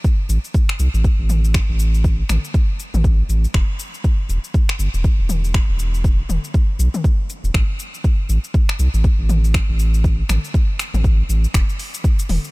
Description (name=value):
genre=afro house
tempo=120 BPM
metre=4/4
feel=swing 60% on 16ths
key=unclear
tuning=A4 = 438 Hz
part: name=deep house drum kit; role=drums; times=0.0-12.5 s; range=finger snaps, hi-hat, shaker, toms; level=-27 LUFS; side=left 2 dB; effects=overdrive
part: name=electronic kick drum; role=drums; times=0.0-12.2 s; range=none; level=-16 LUFS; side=equal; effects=overdrive
part: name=round analog bass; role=bass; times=0.3-12.4 s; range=E1 to C2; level=-17 LUFS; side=equal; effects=sidechain pumping
room=digital ambience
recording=none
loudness=-16 LUFS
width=side -24 dB against mid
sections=0.0-11.5 A section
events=none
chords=none